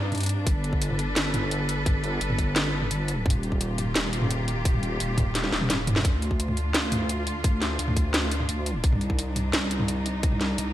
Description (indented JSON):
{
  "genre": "half-time drum and bass",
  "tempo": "172 BPM",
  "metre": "4/4",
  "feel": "half-time",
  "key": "D phrygian",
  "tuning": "A4 = 439 Hz",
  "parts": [
    { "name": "rich studio cello section", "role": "sustained chords", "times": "0.0-10.7 s", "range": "C3 to B4", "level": "-32 LUFS", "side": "equal", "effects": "sidechain pumping" },
    { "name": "deep soft wobble bass", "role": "bass", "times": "0.0-10.7 s", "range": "Eb1 to G2", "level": "-28 LUFS", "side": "equal", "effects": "chorus, tube saturation" },
    { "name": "drum and bass drum kit", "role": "drums", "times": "0.1-10.7 s", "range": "hi-hat, snare drum, toms", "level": "-27 LUFS", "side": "equal", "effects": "gated reverb" },
    { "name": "electronic kick drum", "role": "drums", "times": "0.5-10.3 s", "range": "none", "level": "-24 LUFS", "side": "equal", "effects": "none" }
  ],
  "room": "light reverb",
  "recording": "bright 1980s-style digital production",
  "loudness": "-23 LUFS",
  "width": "side -13 dB against mid",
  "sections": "0.0-6.0 A section; 6.0-10.7 A section",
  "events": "drop 0.0-6.0, 6.0-10.7; drum fill 5.3-6.0",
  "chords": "0.5 G; 3.3 Eb; 6.0 Dm; 8.8 Cm"
}